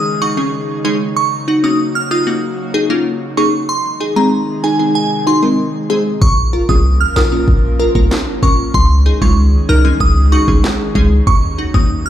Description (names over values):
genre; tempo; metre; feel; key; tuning
dancehall; 95 BPM; 4/4; straight; unclear; A4 = 440 Hz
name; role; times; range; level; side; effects
glassy synth bell; melody; 0.0-12.1 s; Ab5 to F6; -19 LUFS; right 2 dB; chorus, phaser, tape echo
airy breathy pad; sustained chords; 0.0-12.1 s; C3 to Bb4; -22 LUFS; equal; chorus
glassy wavetable pluck; accompaniment; 0.2-11.9 s; Ab3 to Bb4; -16 LUFS; equal; chorus
warm 808-style bass; bass; 6.2-12.1 s; Bb1 to Eb2; -13 LUFS; equal; none
island pop drum kit; drums; 6.2-11.9 s; handclaps, kick drum, snare drum; -14 LUFS; equal; none
room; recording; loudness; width
little or no reverb; played on a big sound system in a bare room, large studio reverb; -11 LUFS; side -11 dB against mid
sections
0.0-12.1 A section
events
none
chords
0.0 Dbsus2; 1.2 Ebm7; 3.7 Ab; 6.2 Bbm; 8.7 Dbsus2; 11.3 Ebm7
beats
0.53 | 1.16 1.79 2.43 3.06 | 3.69 4.32 4.95 5.58 | 6.22 6.85 7.48 8.11 | 8.74 9.37 10.01 10.64 | 11.27 11.90